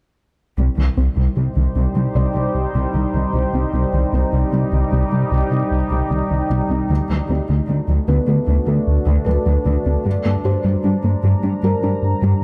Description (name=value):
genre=cinematic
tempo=76 BPM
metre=4/4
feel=straight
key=C minor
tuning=A4 = 437 Hz
part: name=deep dark ambient pad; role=sustained chords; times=1.4-12.4 s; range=G3 to Bb5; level=-26 LUFS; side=equal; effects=chorus, built-in reverb
part: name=soft round pluck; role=arpeggios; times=0.6-12.3 s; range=C3 to G4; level=-27 LUFS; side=equal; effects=none
part: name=smooth synth bass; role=riff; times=0.6-12.3 s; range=C2 to G3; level=-21 LUFS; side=equal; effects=none
part: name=rich symphonic cello section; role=bass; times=0.6-12.3 s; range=C2 to G2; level=-27 LUFS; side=equal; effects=none
part: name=felt-muted upright piano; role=texture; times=2.2-12.4 s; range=B3 to D5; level=-30 LUFS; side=equal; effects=digital delay
room=light reverb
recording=close, detailed microphones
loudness=-18 LUFS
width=mono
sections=0.6-12.4 A section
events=none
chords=0.6 Cm; 6.9 D7; 10.1 Gm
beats=| 0.58 1.37 2.16 2.95 | 3.74 4.53 5.32 6.11 | 6.90 7.68 8.47 9.26 | 10.05 10.84 11.63 12.42